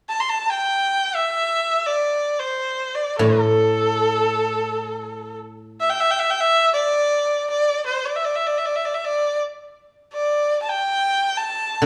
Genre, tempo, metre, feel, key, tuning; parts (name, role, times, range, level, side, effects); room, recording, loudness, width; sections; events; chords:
chinese traditional, Chinese chamber ensemble; free time; D shang mode; A4 = 440 Hz
clear erhu; melody; 0.1-11.9 s; A4 to C6; -22 LUFS; equal
guzheng; accompaniment; 3.2-5.8, 11.8-11.9 s; A2 to D3; -22 LUFS; equal
moderate recital hall reverb, RT60 1.4 s; small room ambience; -21 LUFS; mono
0.0-11.9 A section